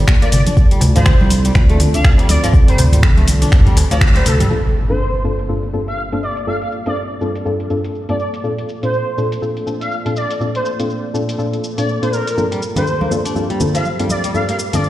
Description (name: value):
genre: afro house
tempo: 122 BPM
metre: 4/4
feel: swing 59% on 16ths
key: G minor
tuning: A4 = 436 Hz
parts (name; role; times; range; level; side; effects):
- dark analog pad; sustained chords; 0.0-14.9 s; Bb3 to D5; -27 LUFS; right 2 dB; chorus, sidechain pumping
- flamenco guitar; arpeggios; 0.0-4.5, 12.5-14.8 s; F3 to D4; -24 LUFS; left 2 dB; sidechain pumping, low-pass filter, dub echo
- smooth gliding synth bass; bass; 0.0-4.4 s; G1 to D2; -14 LUFS; equal; sidechain pumping
- afro-pop drum kit; drums; 0.1-14.9 s; finger snaps, hi-hat, shaker, toms; -22 LUFS; equal; low-pass filter on hats, low-pass filter on perc, low-pass filter on snare, low-pass filter on toms
- electronic kick drum; drums; 0.1-4.1 s; none; -11 LUFS; equal; none
- congas; percussion; 0.1-4.5, 12.4-14.8 s; none; -22 LUFS; right 1 dB; none
- expressive portamento lead; melody; 0.2-14.9 s; A4 to F5; -23 LUFS; equal; ensemble chorus, dub echo
- darbuka; percussion; 0.2-4.4 s; none; -22 LUFS; left 1 dB; none
- deep mellow chord stab; stabs; 4.5-14.9 s; G2 to A4; -20 LUFS; left 1 dB; chorus, sidechain pumping, dub echo
- impact; sound effects; 4.5-6.5 s; none; -22 LUFS; equal; none
room: light reverb, digital ambience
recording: played on a big sound system in a bare room, large studio reverb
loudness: -13 LUFS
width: side -15 dB against mid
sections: 0.0-4.5 A section; 4.5-14.9 B section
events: band accent 4.0; drum fill 4.1-4.5; impact 4.5-6.5; filter sweep on drum 4.5-14.9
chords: 0.0 Gm9; 0.6 Dm7; 4.5 Gm11; 8.4 Bbmaj7; 12.4 Gm11